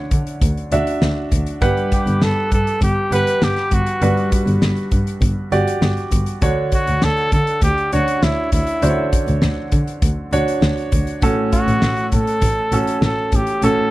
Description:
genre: piano-driven pop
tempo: 100 BPM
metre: 4/4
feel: straight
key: D major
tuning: A4 = 440 Hz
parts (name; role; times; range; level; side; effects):
- clear concert grand piano; accompaniment; 0.0-13.9 s; G2 to F#5; -21 LUFS; right 1 dB; none
- dark double bass; bass; 0.1-13.7 s; G1 to D3; -21 LUFS; equal; none
- loose indie drum kit; drums; 0.1-13.8 s; hi-hat, kick drum, snare drum; -19 LUFS; equal; none
- warm trumpet; melody; 1.9-13.9 s; E4 to B4; -21 LUFS; equal; tape echo
room: little or no reverb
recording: dry, close 1970s-style studio recording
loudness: -15 LUFS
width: side -17 dB against mid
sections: 0.0-13.9 A section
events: none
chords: 0.0 Dmaj7; 1.6 Gmaj7; 6.4 Dmaj7; 11.2 A6

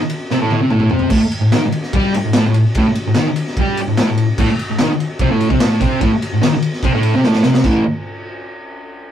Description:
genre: garage rock duo or trio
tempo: 147 BPM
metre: 4/4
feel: straight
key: unclear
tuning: A4 = 440 Hz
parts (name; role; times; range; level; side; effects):
- fuzz guitar; riff; 0.0-7.8 s; A2 to G4; -14 LUFS; equal; distortion
- raw garage drum kit; drums; 0.0-7.7 s; crash cymbal, kick drum, ride cymbal, snare drum, toms; -19 LUFS; equal; none
room: wet booth ambience, RT60 0.2 s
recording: rough rehearsal-room recording, warm saturation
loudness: -13 LUFS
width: side -10 dB against mid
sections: 0.0-1.1 A section; 1.1-7.7 A section; 7.7-9.1 B section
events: drum fill 0.3-1.1, 7.2-7.7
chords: 0.0 Am; 7.7 A5

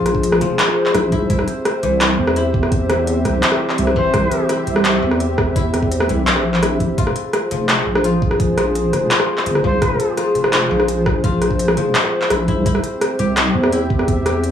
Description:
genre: half-time drum and bass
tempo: 169 BPM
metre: 4/4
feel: half-time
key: F harmonic minor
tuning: A4 = 440 Hz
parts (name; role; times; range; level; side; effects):
- dark analog pad; sustained chords; 0.0-14.5 s; C4 to E5; -20 LUFS; equal; chorus, sidechain pumping, cassette tape
- koto; arpeggios; 0.0-14.5 s; E3 to G4; -26 LUFS; left 8 dB; cassette tape, analog delay
- deep soft wobble bass; bass; 0.0-14.5 s; F1 to E2; -20 LUFS; equal; chorus
- electronic kick drum; drums; 0.1-14.2 s; none; -20 LUFS; right 1 dB; cassette tape
- industrial drum kit; drums; 0.1-14.5 s; handclaps, hi-hat, rim click; -19 LUFS; equal; overdrive, cassette tape
- jazz flute; melody; 4.0-4.5, 9.6-10.1 s; C5; -24 LUFS; left 2 dB; cassette tape, analog delay
room: moderate spring reverb, RT60 1.4 s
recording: home recording on cassette, studio reverb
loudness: -14 LUFS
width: side -9 dB against mid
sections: 0.0-14.5 A section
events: none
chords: 0.0 Fm; 1.3 C; 7.0 Fm; 12.7 C

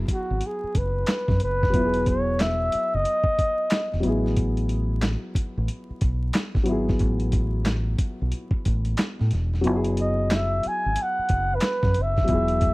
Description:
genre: R&B, neo-soul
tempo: 91 BPM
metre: 4/4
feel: swing 62% on 16ths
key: unclear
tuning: A4 = 441 Hz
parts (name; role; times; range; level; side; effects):
- dark upright piano; accompaniment; 0.0-12.7 s; F#3 to G#4; -29 LUFS; left 1 dB; none
- deep dub fingered electric bass; bass; 0.0-12.7 s; E1 to A2; -25 LUFS; equal; none
- breathy flugelhorn; melody; 0.1-4.1, 10.0-12.7 s; F#4 to G#5; -24 LUFS; equal; none
- dusty soul sampler-style drum kit; drums; 0.1-12.7 s; handclaps, hi-hat, kick drum, snare drum; -25 LUFS; equal; overdrive
room: little or no reverb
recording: dry, close 1970s-style studio recording, vinyl crackle, faint mains hum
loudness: -21 LUFS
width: side -21 dB against mid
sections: 0.0-12.7 A section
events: kick muted 9.6-11.0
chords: 0.0 F#9sus4; 1.7 Emaj7; 4.0 A5; 9.6 F#9sus4

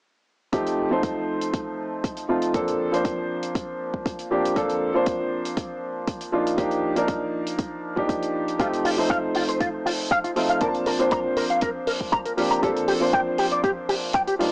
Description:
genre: nu-disco, nu disco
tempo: 119 BPM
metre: 4/4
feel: straight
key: F mixolydian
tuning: A4 = 439 Hz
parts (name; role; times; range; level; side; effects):
- warm concert grand piano; accompaniment; 0.5-14.5 s; F3 to A5; -23 LUFS; equal; sidechain pumping, cassette tape, tape echo
- electronic kick drum; drums; 0.5-14.2 s; none; -28 LUFS; equal; overdrive, cassette tape
- hi-hat; drums; 0.5-14.5 s; none; -34 LUFS; right 1 dB; cassette tape
- electric guitar with an envelope filter; riff; 8.6-14.4 s; G3 to Bb5; -23 LUFS; equal; ensemble chorus, cassette tape
room: light reverb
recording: home recording on cassette, small speaker sound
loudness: -22 LUFS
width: side -27 dB against mid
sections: 0.5-14.5 A section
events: none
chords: 0.5 F9; 2.5 Bbmaj7; 4.6 Bbmaj9/F; 6.3 F13sus4; 8.6 F9; 10.6 Gm11

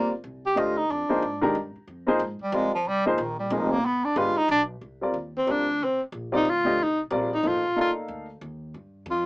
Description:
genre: jazz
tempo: 184 BPM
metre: 3/4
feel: swing 62% on 8ths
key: G phrygian, C dorian from 4.8 s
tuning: A4 = 439 Hz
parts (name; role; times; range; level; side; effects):
- clear bass clarinet; second line; 0.0-4.6 s; C3 to G4; -24 LUFS; right 1 dB; none
- warm baby grand piano; accompaniment; 0.0-8.3 s; Eb3 to F5; -25 LUFS; left 1 dB; none
- upright bass; bass; 0.0-9.3 s; Eb1 to Ab2; -37 LUFS; equal; none
- breathy tenor saxophone; melody; 5.4-9.3 s; C4 to F4; -23 LUFS; equal; none
room: moderate booth ambience, RT60 0.2 s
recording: small speaker sound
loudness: -23 LUFS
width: side -25 dB against mid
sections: 0.0-4.8 A section; 4.8-9.3 A section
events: bass clarinet solo 0.0-4.8; tenor saxophone solo 4.8-9.3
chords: 0.0 G9sus4; 0.9 Fm11; 3.8 G7b9; 4.8 Cm11

